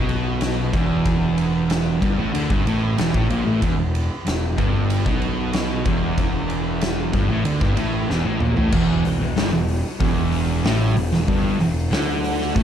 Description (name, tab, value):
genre	stoner and doom metal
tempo	94 BPM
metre	4/4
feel	straight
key	E minor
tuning	A4 = 441 Hz
part	overdriven electric guitar	riff	0.0-12.6 s	E2 to D3	-26 LUFS	right 1 dB	none
part	thick fuzz guitar	riff	0.0-12.6 s	E2 to D3	-25 LUFS	left 6 dB	distortion
part	thick fuzz guitar	riff	0.0-12.6 s	E2 to D3	-25 LUFS	right 8 dB	distortion
part	fuzz picked electric bass	bass	0.0-12.6 s	E1 to D2	-26 LUFS	equal	overdrive
part	oversized low-tuned drum kit	drums	0.1-12.6 s	crash cymbal, hi-hat, kick drum, ride cymbal, snare drum, toms	-24 LUFS	equal	none
room	light reverb, small room ambience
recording	dark, warm production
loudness	-18 LUFS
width	side -9 dB against mid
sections	0.0-8.7 A section; 8.7-12.6 B section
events	drum fill 8.1-8.7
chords	0.0 Em